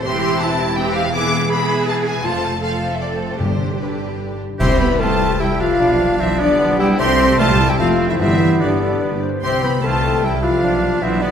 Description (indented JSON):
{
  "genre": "classical, dramatic, fast romantic movement for symphony orchestra",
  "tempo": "144-167 BPM",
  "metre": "3/4",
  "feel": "rubato",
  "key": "C major",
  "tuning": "A4 = 440 Hz",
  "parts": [
    { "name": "warm symphonic violin section", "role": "melody", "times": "0.0-11.3 s", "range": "B4 to D6", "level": "-26 LUFS", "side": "left 2 dB", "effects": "none" },
    { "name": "rich chamber viola section", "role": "accompaniment", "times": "0.0-11.3 s", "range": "D3 to G4", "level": "-26 LUFS", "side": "right 1 dB", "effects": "none" },
    { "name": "concert harp", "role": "arpeggios", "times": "0.0-11.3 s", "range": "E2 to D6", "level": "-25 LUFS", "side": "left 7 dB", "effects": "none" },
    { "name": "rich symphonic cello section", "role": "bass", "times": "0.0-11.3 s", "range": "D3 to A4", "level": "-23 LUFS", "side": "right 3 dB", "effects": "none" },
    { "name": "warm symphonic double bass section", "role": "bass", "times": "0.0-11.3 s", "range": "E1 to C2", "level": "-24 LUFS", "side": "right 4 dB", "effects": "none" },
    { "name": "clear symphonic violin section", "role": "second line", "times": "0.1-11.3 s", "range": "C4 to C6", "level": "-28 LUFS", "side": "left 1 dB", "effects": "none" },
    { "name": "timpani", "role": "percussion", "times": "3.4-5.2, 8.2-8.8 s", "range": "G2 to C3", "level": "-25 LUFS", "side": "left 1 dB", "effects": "none" },
    { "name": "clear oboe", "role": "second line", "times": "4.6-11.3 s", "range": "B3 to G4", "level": "-24 LUFS", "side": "right 2 dB", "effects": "none" },
    { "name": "silver concert flute", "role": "second line", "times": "4.6-11.3 s", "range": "D5 to C6", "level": "-25 LUFS", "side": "equal", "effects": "none" },
    { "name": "warm bassoon", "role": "accompaniment", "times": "4.6-11.3 s", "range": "G3 to E4", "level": "-25 LUFS", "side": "right 2 dB", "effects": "none" },
    { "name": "mellow French horn section", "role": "sustained chords", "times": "4.6-11.3 s", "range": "D4 to C5", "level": "-19 LUFS", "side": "left 2 dB", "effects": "none" },
    { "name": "clash cymbals and concert bass drum", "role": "percussion", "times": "4.6-5.4 s", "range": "none", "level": "-26 LUFS", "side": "right 1 dB", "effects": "none" },
    { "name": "mellow clarinet", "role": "second line", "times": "8.6-9.4 s", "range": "G4 to C5", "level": "-29 LUFS", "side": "left 2 dB", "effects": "none" }
  ],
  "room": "wet scoring stage reverb, RT60 1.9 s",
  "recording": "none",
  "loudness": "-15 LUFS",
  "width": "side -8 dB against mid",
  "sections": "0.0-4.6 A section; 4.6-11.3 B section",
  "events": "band accent 4.6-5.0",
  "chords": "0.0 C/E; 1.1 E7; 2.2 F; 3.4 G; 4.6 C; 5.8 G7/B; 7.0 C; 7.8 Fmaj7; 8.2 G; 9.4 C; 10.6 G7/B",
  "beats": "| 0.05 0.41 0.77 | 1.14 1.51 1.87 | 2.24 2.62 3.00 | 3.40 3.80 4.20 | 4.60 5.00 5.40 | 5.80 6.20 6.59 | 6.99 7.39 7.79 | 8.19 8.61 9.02 | 9.43 9.84 10.24 | 10.63 11.02"
}